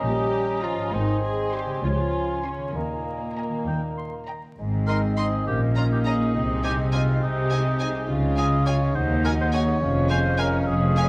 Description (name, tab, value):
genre	cinematic, playful, whimsical film cue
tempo	68 BPM (dotted quarters)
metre	6/8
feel	uneven beats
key	Ab major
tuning	A4 = 440 Hz
part	mellow clarinet	second line	0.0-11.1 s	C4 to Eb5	-35 LUFS	equal	none
part	mellow hollow concert flute	second line	0.0-11.1 s	Eb5 to C6	-37 LUFS	equal	none
part	mellow oboe	second line	0.0-11.1 s	Eb4 to C6	-33 LUFS	equal	none
part	mellow bassoon	accompaniment	0.0-11.1 s	Ab3 to Db4	-36 LUFS	equal	none
part	warm studio viola section	accompaniment	0.0-11.1 s	Bb3 to Ab4	-35 LUFS	equal	none
part	concert harp	arpeggios	0.0-11.1 s	Ab2 to Ab5	-36 LUFS	equal	none
part	dark chamber double bass section	bass	0.0-11.1 s	F1 to Eb2	-30 LUFS	equal	none
part	rich studio cello section	bass	0.0-11.1 s	Db2 to Db3	-29 LUFS	equal	none
part	mellow French horn section	sustained chords	0.1-11.1 s	Bb2 to Gb4	-40 LUFS	equal	none
part	clear studio violin section	melody	0.6-11.1 s	Ab5 to C6	-37 LUFS	equal	none
part	warm studio violin section	second line	0.6-11.0 s	C4 to Bb5	-42 LUFS	equal	none
room	moderate scoring stage reverb, RT60 2.1 s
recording	vinyl crackle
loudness	-24 LUFS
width	mono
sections	0.0-4.6 A section; 4.6-11.1 B section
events	none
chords	0.0 Eb7; 0.9 Ab; 1.8 Dbmaj7; 2.8 Ebsus4; 3.7 Eb; 4.6 Ab; 5.5 Eb5/Bb; 6.3 Ab/C; 8.1 Db; 9.0 Ab5/Eb; 9.8 Db/F